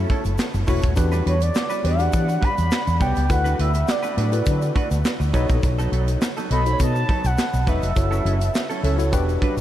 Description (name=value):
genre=early-eighties boogie funk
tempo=103 BPM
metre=4/4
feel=straight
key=E dorian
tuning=A4 = 440 Hz
part: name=tine electric piano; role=accompaniment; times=0.0-9.6 s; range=D4 to D5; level=-28 LUFS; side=left 1 dB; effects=overdrive, fast stereo tremolo
part: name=semi-hollow electric guitar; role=riff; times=0.0-9.6 s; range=F#3 to C#5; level=-31 LUFS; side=right 3 dB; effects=wide subtle chorus
part: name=vintage muted fingered electric bass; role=bass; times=0.0-9.6 s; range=D#1 to E3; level=-21 LUFS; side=equal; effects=none
part: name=tight funk drum kit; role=drums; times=0.1-9.6 s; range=handclaps, hi-hat, kick drum, snare drum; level=-24 LUFS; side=equal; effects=none
part: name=tube shaker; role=percussion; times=0.2-9.6 s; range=none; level=-43 LUFS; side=left 7 dB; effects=none
part: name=analog synth brass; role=second line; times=0.7-9.3 s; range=F#3 to F#5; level=-32 LUFS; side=left 1 dB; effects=none
part: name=mellow horn-like synth lead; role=melody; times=1.3-8.8 s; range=C#5 to B5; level=-27 LUFS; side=equal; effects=chorus, phaser, analog delay
room=moderate huge ambient reverb, RT60 8.2 s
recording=dreamy mix soaked in reverb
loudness=-18 LUFS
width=side -12 dB against mid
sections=0.0-9.6 A section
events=none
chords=0.0 F#m7; 1.0 Em9; 3.3 D6; 5.3 B7; 8.0 F#m7